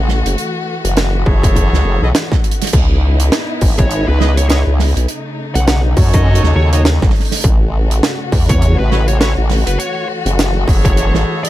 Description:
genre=glitch hop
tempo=102 BPM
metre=4/4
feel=swing 58% on 16ths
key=unclear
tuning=A4 = 439 Hz
part: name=rich chamber string section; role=sustained chords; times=0.0-11.5 s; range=C#3 to F#4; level=-22 LUFS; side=left 2 dB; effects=sidechain pumping
part: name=formant-sweep wobble bass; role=bass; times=0.0-11.2 s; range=F#1 to F#2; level=-13 LUFS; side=equal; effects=chorus
part: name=crisp fusion drum kit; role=drums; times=0.1-11.5 s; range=crash cymbal, hi-hat, snare drum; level=-19 LUFS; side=right 2 dB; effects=none
part: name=bright horn section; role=stabs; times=1.3-11.5 s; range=D#4 to D#5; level=-24 LUFS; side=right 1 dB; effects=sidechain pumping, digital delay
part: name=electronic kick drum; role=drums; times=1.3-10.9 s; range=none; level=-13 LUFS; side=equal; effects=distortion
part: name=fuzz lead guitar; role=melody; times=3.8-11.5 s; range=B4 to F#5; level=-24 LUFS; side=right 1 dB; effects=distortion, digital delay
room=small room ambience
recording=dark, warm production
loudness=-11 LUFS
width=side -15 dB against mid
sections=0.0-11.5 A section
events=drum fill 2.4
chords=0.4 F#m7; 2.7 C#m9; 5.1 B9; 7.4 A6; 9.8 F#m7

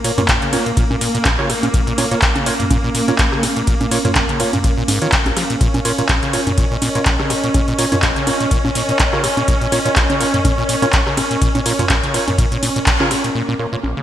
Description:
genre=acid house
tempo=124 BPM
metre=4/4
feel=swing 56% on 16ths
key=Bb minor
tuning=A4 = 441 Hz
part: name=muted studio string section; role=sustained chords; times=0.0-14.0 s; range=Bb3 to Db4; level=-23 LUFS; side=equal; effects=sidechain pumping, low-pass filter
part: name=acid bass, saw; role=riff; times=0.0-14.0 s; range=Bb1 to F3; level=-22 LUFS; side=equal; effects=overdrive, sidechain pumping, digital delay
part: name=percussive organ stab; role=stabs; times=0.0-13.8 s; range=F4 to Db5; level=-25 LUFS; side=right 3 dB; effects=chorus, digital delay
part: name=booming analog drum machine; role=drums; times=0.0-13.9 s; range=congas, handclaps, hi-hat, ride cymbal, rim click, toms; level=-18 LUFS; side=equal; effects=gated reverb
part: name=warbly tape-like pad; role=texture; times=0.0-14.0 s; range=Db4 to F5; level=-25 LUFS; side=right 1 dB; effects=chorus, built-in reverb, sidechain pumping
part: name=electronic kick drum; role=drums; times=0.3-13.0 s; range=none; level=-18 LUFS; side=equal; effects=none
room=moderate lush hall reverb, RT60 2.3 s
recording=bright 1980s-style digital production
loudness=-14 LUFS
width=side -11 dB against mid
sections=0.0-13.4 A section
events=drop 0.0-13.4; band accent 12.9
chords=0.0 Bbm

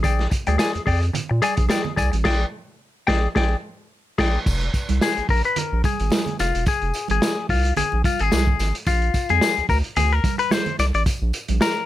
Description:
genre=funk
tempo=109 BPM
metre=4/4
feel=swing 56% on 16ths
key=F dorian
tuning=A4 = 440 Hz
part: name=semi-hollow electric guitar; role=accompaniment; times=0.0-11.9 s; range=F4 to Ab5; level=-22 LUFS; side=left 6 dB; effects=none
part: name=round analog bass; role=bass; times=0.0-11.6 s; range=E1 to Bb2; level=-21 LUFS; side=equal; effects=none
part: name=vintage drum kit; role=drums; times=0.0-11.8 s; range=crash cymbal, hi-hat, kick drum, snare drum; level=-23 LUFS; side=equal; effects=none
part: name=congas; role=percussion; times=0.0-11.9 s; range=none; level=-31 LUFS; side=right 12 dB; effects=none
part: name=tambourine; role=percussion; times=0.0-11.8 s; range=none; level=-37 LUFS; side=left 3 dB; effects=none
room=light reverb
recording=none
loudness=-19 LUFS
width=side -14 dB against mid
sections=0.0-4.5 A section; 4.5-11.9 B section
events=band accent 2.3-4.5; clean electric guitar solo 4.5-11.9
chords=0.0 Bb13; 4.5 Fmadd11; 8.9 Bb9

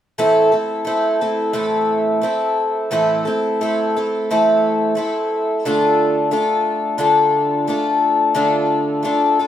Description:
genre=rock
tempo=88 BPM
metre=4/4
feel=straight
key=A minor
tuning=A4 = 438 Hz
part: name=picked twelve-string acoustic guitar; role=solo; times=0.2-9.5 s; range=A2 to A4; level=-15 LUFS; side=left 1 dB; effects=none
room=wet studio reverb, RT60 0.5 s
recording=band playing live in one room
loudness=-15 LUFS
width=side -10 dB against mid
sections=0.2-9.5 A section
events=none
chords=0.2 Am; 5.7 Dm

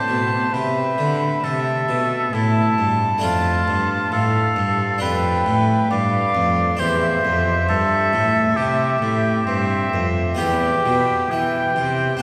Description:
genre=classical, baroque-style sonata movement with continuo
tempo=67 BPM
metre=4/4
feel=straight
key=C major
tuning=A4 = 442 Hz
part: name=warm oboe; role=melody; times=0.0-12.2 s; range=C4 to G5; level=-24 LUFS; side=equal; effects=none
part: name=dark violin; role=second line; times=0.0-12.2 s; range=E5 to A5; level=-26 LUFS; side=equal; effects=none
part: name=harpsichord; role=accompaniment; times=0.0-12.2 s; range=E2 to G4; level=-28 LUFS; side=equal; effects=none
part: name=rich cello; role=bass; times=0.0-12.2 s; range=E2 to E3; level=-25 LUFS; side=equal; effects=none
room=wet cathedral reverb, RT60 4.0 s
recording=recorded in a church or concert hall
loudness=-19 LUFS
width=mono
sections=0.0-12.2 A section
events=none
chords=0.0 Am; 3.2 Dm/F; 6.8 C/E; 10.4 Em

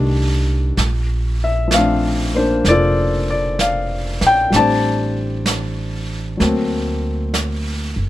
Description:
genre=jazz ballad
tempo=64 BPM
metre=4/4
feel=swing 68% on 8ths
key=unclear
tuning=A4 = 439 Hz
part: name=warm grand piano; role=accompaniment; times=0.0-8.1 s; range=Eb3 to A5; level=-18 LUFS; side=left 2 dB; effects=none
part: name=upright bass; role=bass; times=0.0-8.1 s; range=F1 to D2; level=-20 LUFS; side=right 1 dB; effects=none
part: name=jazz brush drum kit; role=drums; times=0.8-8.1 s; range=brushed snare drum, hi-hat, snare drum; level=-24 LUFS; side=right 2 dB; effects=none
room=little or no reverb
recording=close, detailed microphones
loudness=-15 LUFS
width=side -15 dB against mid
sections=0.0-8.1 A section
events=none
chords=0.0 F13 (rootless); 0.8 Bbmaj7; 4.5 Am7; 6.4 D7b13

